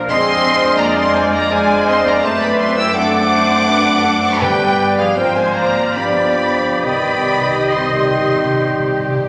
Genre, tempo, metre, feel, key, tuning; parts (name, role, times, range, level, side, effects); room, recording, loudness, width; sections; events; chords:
classical, slow romantic movement for symphony orchestra; 58-88 BPM; 3/4; rubato; A4 = 440 Hz
clear clarinet; second line; 0.0-9.2 s; G4 to D5; -30 LUFS; equal
clear oboe; second line; 0.0-9.2 s; D5 to G5; -27 LUFS; equal
clear studio viola section; accompaniment; 0.0-9.1 s; Ab4 to Eb5; -25 LUFS; equal
mellow bassoon; accompaniment; 0.0-9.2 s; Eb3 to A3; -24 LUFS; equal
concert harp; arpeggios; 0.0-9.3 s; F2 to C5; -28 LUFS; equal
rich studio double bass section; bass; 0.0-9.3 s; G1 to G2; -32 LUFS; equal
rich studio violin section; melody; 0.1-9.1 s; F5 to E6; -21 LUFS; equal
bright silver concert flute; second line; 0.1-9.1 s; Ab4 to G5; -24 LUFS; equal
rich studio violin section; second line; 0.1-9.3 s; G4 to G5; -29 LUFS; equal
mellow French horn section; sustained chords; 0.1-9.2 s; Eb3 to G4; -24 LUFS; equal
rich studio cello section; bass; 0.1-9.1 s; F3 to E4; -26 LUFS; equal
timpani; percussion; 4.4-9.3 s; G2 to C3; -28 LUFS; equal
wet scoring stage reverb, RT60 1.9 s; -15 LUFS; mono
0.0-9.3 A section
timpani fill 6.8-9.3
0.1 Ddim/F; 2.2 D7/F#; 4.4 G; 5.2 Fm/Ab; 6.0 G7; 6.8 Cm